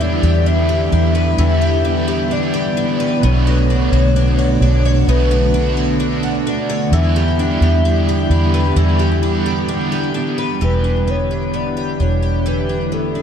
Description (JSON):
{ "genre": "dream pop", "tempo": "65 BPM", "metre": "4/4", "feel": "straight", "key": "E dorian", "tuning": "A4 = 440 Hz", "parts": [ { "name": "hollow clarinet-like synth lead", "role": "melody", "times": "0.0-13.2 s", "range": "A4 to E5", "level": "-23 LUFS", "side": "left 2 dB", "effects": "chorus, ping-pong delay" }, { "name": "overdriven electric guitar", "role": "accompaniment", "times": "0.0-11.1 s", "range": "B2 to C#5", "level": "-23 LUFS", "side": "right 3 dB", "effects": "harmonic tremolo, analog chorus" }, { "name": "string machine, violins", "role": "sustained chords", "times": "0.0-13.2 s", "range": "D3 to E4", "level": "-20 LUFS", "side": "equal", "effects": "ensemble chorus" }, { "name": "picked twelve-string acoustic guitar", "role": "arpeggios", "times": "0.0-13.2 s", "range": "B2 to C#5", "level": "-22 LUFS", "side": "left 2 dB", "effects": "analog chorus, ping-pong delay" }, { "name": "vintage muted fingered electric bass", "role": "bass", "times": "0.0-13.2 s", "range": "E1 to E2", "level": "-16 LUFS", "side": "equal", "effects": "none" }, { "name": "vibraphone with medium mallets", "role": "texture", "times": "0.5-10.8 s", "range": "D4 to B5", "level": "-35 LUFS", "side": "left 3 dB", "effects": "none" } ], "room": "light reverb, small room ambience", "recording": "dark, warm production", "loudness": "-14 LUFS", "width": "side -8 dB against mid", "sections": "0.0-10.6 A section; 10.6-13.2 B section", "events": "none", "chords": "0.0 Em7; 3.2 Bm9; 6.9 Em7", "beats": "0.47 1.39 2.31 | 3.23 4.16 5.08 6.00 | 6.93 7.85 8.77 9.70 | 10.62 11.54 12.46" }